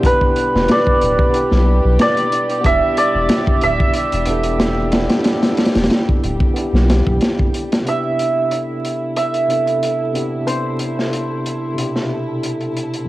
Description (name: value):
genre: trip hop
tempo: 92 BPM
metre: 4/4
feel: swing 54% on 16ths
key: unclear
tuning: A4 = 440 Hz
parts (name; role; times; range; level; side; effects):
- santur; melody; 0.0-13.1 s; B4 to E5; -18 LUFS; right 2 dB; cassette tape, tape echo
- tine electric piano; accompaniment; 0.0-13.1 s; F2 to A4; -22 LUFS; equal; medium stereo tremolo, low-pass filter, cassette tape
- warm studio violin section; sustained chords; 0.0-13.1 s; G3 to G4; -29 LUFS; right 1 dB; low-pass filter, cassette tape
- crunchy breakbeat drum kit; drums; 0.0-13.1 s; hi-hat, kick drum, snare drum; -18 LUFS; equal; high-pass filter on kick, cassette tape, high-pass filter on hats, high-pass filter on snare, high-pass filter on room
- wind-like tuned noise texture; texture; 0.0-13.1 s; G4 to A4; -33 LUFS; left 1 dB; none
- soft dub sub bass; bass; 0.5-7.2 s; D1 to B1; -17 LUFS; equal; none
room: small room ambience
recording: home recording on cassette, vinyl crackle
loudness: -14 LUFS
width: side -17 dB against mid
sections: 0.0-7.9 A section; 7.9-13.1 B section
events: none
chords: 0.0 Em7; 7.9 Cmaj7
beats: | 0.04 0.69 1.35 2.00 | 2.65 3.30 3.96 4.61 | 5.26 5.91 6.56 7.21 | 7.87 8.52 9.17 9.82 | 10.48 11.13 11.78 12.43 | 13.09